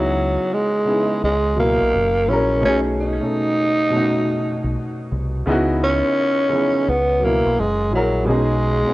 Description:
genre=lo-fi hip hop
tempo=85 BPM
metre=4/4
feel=swing 65% on 16ths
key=unclear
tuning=A4 = 440 Hz
part: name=growling tenor saxophone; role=melody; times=0.0-8.9 s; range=F#3 to D#4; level=-18 LUFS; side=right 1 dB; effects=low-pass filter, plate reverb, tape echo
part: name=dark upright piano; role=accompaniment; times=0.0-8.9 s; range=B2 to A#4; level=-22 LUFS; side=left 1 dB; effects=cassette tape, low-pass filter, plate reverb
part: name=deep dub fingered electric bass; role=bass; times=0.0-8.8 s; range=F#1 to C#2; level=-23 LUFS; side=equal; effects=none
room=moderate small room reverb, RT60 0.6 s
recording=home recording on cassette, nothing above 10.8 kHz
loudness=-16 LUFS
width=side -18 dB against mid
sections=0.0-8.9 A section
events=none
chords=0.0 C#m11; 1.2 F#9sus4/C#; 1.9 F#9; 2.6 B13; 5.5 C#m11; 6.9 F#7sus4/C#; 7.6 F#9; 8.3 B69

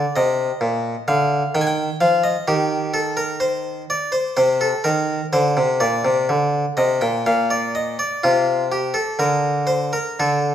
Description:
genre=classical, baroque-style suite movement for harpsichord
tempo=63 BPM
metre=3/4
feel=rubato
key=unclear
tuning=A4 = 436 Hz
part: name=harpsichord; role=solo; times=0.0-10.5 s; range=Bb2 to Ab5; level=-17 LUFS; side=equal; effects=none
room=moderate recital hall reverb, RT60 1.6 s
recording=minimal, uncompressed stereo recording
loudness=-17 LUFS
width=side -10 dB against mid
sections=0.0-10.5 A section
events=none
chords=0.0 Bb; 1.5 Ebadd9; 2.5 N.C.; 4.4 Cm7; 5.3 Bb69; 7.3 N.C.

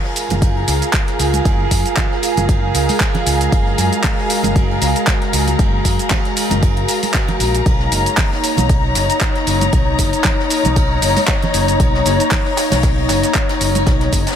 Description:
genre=deep house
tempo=116 BPM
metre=4/4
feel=swing 55% on 16ths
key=F# major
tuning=A4 = 442 Hz
part: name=warbly tape-like pad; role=sustained chords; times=0.0-14.4 s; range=G#3 to C#5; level=-22 LUFS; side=equal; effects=chorus, built-in reverb, sidechain pumping
part: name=jazz brush drum kit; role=drums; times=0.0-14.4 s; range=hi-hat, ride cymbal, snare drum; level=-28 LUFS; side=right 2 dB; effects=sidechain pumping on cymbals, high-pass filter on cymbals, sidechain pumping on hats, high-pass filter on hats, high-pass filter on snare, high-pass filter on room
part: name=dark studio string section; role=texture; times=0.0-14.4 s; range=D#4 to A#5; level=-20 LUFS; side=left 2 dB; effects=sidechain pumping
part: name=deep house drum kit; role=drums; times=0.2-14.4 s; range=handclaps, hi-hat, shaker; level=-21 LUFS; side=right 1 dB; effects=none
part: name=overdriven fingered electric bass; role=bass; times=0.3-14.2 s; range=F#1 to F#2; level=-19 LUFS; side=equal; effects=tube saturation, sidechain pumping
part: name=congas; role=percussion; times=0.3-13.8 s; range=none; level=-23 LUFS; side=right 4 dB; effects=none
part: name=electronic kick drum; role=drums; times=0.4-14.2 s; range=none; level=-17 LUFS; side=equal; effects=none
room=light reverb, studio ambience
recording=none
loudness=-13 LUFS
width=side -9 dB against mid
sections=0.0-14.4 A section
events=none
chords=0.0 F#maj9; 7.7 Bmaj9

